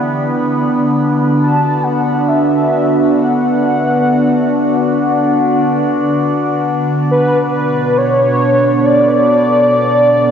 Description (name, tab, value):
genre	ambient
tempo	free time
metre	none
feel	none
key	D major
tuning	A4 = 437 Hz
part	evolving wavetable pad	sustained chords	0.0-10.3 s	B2 to A4	-13 LUFS	equal	phaser, built-in reverb, shimmer reverb
part	organ-like drone	drone	0.0-10.3 s	D3	-27 LUFS	left 1 dB	none
part	warm velvety synth lead	melody	1.4-10.3 s	B4 to A5	-14 LUFS	equal	chorus, shimmer reverb, tape echo
room	wet huge ambient reverb, RT60 8.8 s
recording	nothing above 7.5 kHz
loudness	-11 LUFS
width	side -8 dB against mid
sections	0.0-10.3 A section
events	none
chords	0.1 D6; 7.1 Bm7